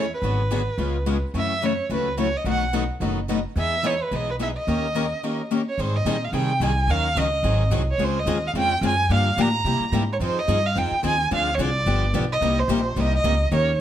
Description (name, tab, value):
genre	acoustic string swing (jazz manouche)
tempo	217 BPM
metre	4/4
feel	swing 56% on 8ths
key	Ab major from 5.8 s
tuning	A4 = 440 Hz
part	warm violin	melody	0.0-13.8 s	B4 to Bb5	-24 LUFS	right 2 dB	plate reverb
part	picked plugged-in swing-style acoustic guitar	accompaniment	0.0-13.7 s	B2 to A#4	-32 LUFS	right 8 dB	none
part	picked steel-string acoustic guitar	accompaniment	0.0-13.7 s	B2 to A#4	-26 LUFS	left 6 dB	none
part	upright bass	bass	0.0-13.8 s	F#1 to C3	-25 LUFS	equal	none
room	moderate studio reverb, RT60 0.6 s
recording	none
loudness	-20 LUFS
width	side -11 dB against mid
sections	0.0-5.8 A section; 5.8-13.8 B section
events	none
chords	0.2 G#m7b5; 0.8 C#7; 1.3 F#m7; 2.4 B7; 3.6 Emaj7; 4.7 D#7; 5.8 Abmaj7; 6.9 Ebm9; 7.4 Ab7; 8.0 Dbmaj7; 9.1 Gm9; 9.6 C7b13; 10.2 Fm7; 11.3 Dm7b5; 11.9 G7; 12.4 Cm7